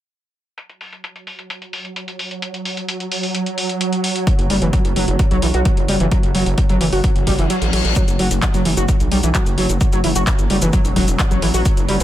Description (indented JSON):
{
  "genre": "driving peak-time techno",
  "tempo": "130 BPM",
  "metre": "4/4",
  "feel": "straight",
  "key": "F# phrygian",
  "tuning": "A4 = 440 Hz",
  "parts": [
    { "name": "swarming drone", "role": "drone", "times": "1.9-12.0 s", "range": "F#3", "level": "-25 LUFS", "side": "right 2 dB", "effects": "built-in reverb, sidechain pumping" },
    { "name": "techno drum kit", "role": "drums", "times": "0.6-12.0 s", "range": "handclaps, hi-hat, shaker", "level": "-24 LUFS", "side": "left 1 dB", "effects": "low-pass filter on hats, low-pass filter on perc, low-pass filter on snare, low-pass filter on room" },
    { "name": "electronic kick drum", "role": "drums", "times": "4.3-11.7 s", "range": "none", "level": "-17 LUFS", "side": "equal", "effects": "none" },
    { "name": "gritty driven synth bass", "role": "bass", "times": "4.4-12.0 s", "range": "E1 to B1", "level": "-20 LUFS", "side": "equal", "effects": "sidechain pumping" },
    { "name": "overdriven synth lead", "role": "riff", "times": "4.5-12.0 s", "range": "E3 to F#4", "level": "-20 LUFS", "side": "equal", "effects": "distortion, wide subtle chorus, sidechain pumping, dub echo" },
    { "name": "reverse cymbal", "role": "sound effects", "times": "7.4-8.0 s", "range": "none", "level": "-26 LUFS", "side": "left 6 dB", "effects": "none" }
  ],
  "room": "light reverb",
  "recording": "none",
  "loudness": "-15 LUFS",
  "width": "side -13 dB against mid",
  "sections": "0.6-8.0 A section; 8.0-12.0 B section",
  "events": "reverse cymbal 7.4-8.0; kick drops out 7.5-8.0",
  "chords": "0.6 N.C.; 8.0 F#m"
}